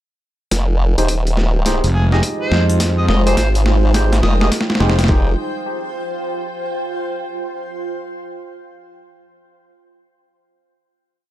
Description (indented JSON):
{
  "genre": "glitch hop",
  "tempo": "105 BPM",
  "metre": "4/4",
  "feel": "swing 63% on 16ths",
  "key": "F minor",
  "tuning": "A4 = 440 Hz",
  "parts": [
    { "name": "dark analog pad", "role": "sustained chords", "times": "1.5-5.4 s", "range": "Ab3 to F4", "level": "-26 LUFS", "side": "equal", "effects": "chorus, sidechain pumping" },
    { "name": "formant-sweep wobble bass", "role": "bass", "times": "0.5-5.4 s", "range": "Eb1 to Ab1", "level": "-15 LUFS", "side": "equal", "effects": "chorus" },
    { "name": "boom bap sampler-style drum kit", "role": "drums", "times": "0.5-5.3 s", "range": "handclaps, kick drum, snare drum", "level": "-20 LUFS", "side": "equal", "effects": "overdrive, high-pass filter on kick, high-pass filter on snare" },
    { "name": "boom bap sampler-style drum kit", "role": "drums", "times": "0.5-5.1 s", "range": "hi-hat, snare drum", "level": "-21 LUFS", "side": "equal", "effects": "overdrive" },
    { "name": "granular cloud pad", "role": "texture", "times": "2.0-7.3 s", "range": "F4 to G5", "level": "-26 LUFS", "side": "equal", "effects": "built-in reverb, sidechain pumping" },
    { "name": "barky tine electric piano", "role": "stabs", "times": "1.0-5.3 s", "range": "Eb4 to Eb5", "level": "-24 LUFS", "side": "right 1 dB", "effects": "lush chorus, sidechain pumping, low-pass filter, ping-pong delay" },
    { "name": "fuzz fingered electric bass", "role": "bass", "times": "1.8-5.1 s", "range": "F1 to F2", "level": "-16 LUFS", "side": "equal", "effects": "overdrive, tube saturation" },
    { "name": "mellow harmonica", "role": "melody", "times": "1.9-4.5 s", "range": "Ab4 to Eb5", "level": "-26 LUFS", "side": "equal", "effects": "ping-pong delay" }
  ],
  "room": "light reverb",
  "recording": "dark, warm production",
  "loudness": "-15 LUFS",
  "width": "side -13 dB against mid",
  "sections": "0.5-5.1 build; 5.1-7.4 final chord",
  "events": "build-up 0.5-5.1; drum fill 0.5-5.1; filter sweep on analog synth pad 0.5-5.1",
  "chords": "0.5 Fm9"
}